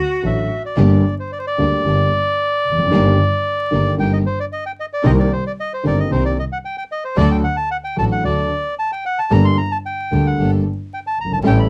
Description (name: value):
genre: tango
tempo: 112 BPM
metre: 4/4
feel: rubato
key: G harmonic minor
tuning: A4 = 439 Hz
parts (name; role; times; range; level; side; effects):
- warm cello; second line; 0.0-0.5 s; F#4; -24 LUFS; equal; none
- warm concert grand piano; accompaniment; 0.2-11.7 s; F#1 to A4; -21 LUFS; equal; none
- clear symphonic string section; stabs; 0.2-11.7 s; A3 to Bb4; -30 LUFS; equal; none
- warm double bass; bass; 0.2-11.7 s; F1 to D2; -21 LUFS; equal; none
- bandoneon; melody; 0.3-11.7 s; C5 to C6; -23 LUFS; equal; none
room: little or no reverb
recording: dry, close 1970s-style studio recording, vinyl crackle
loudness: -18 LUFS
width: mono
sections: 0.8-11.7 A section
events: none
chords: 0.0 D; 0.8 Gm; 2.9 Eb/G; 5.0 Cm7; 7.2 D; 9.3 Gmadd9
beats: 0.23 | 0.78 1.31 1.85 2.38 | 2.92 3.45 3.98 4.51 | 5.05 5.58 6.11 6.64 | 7.18 7.71 8.24 8.78 | 9.32 9.85 10.39 10.92 | 11.46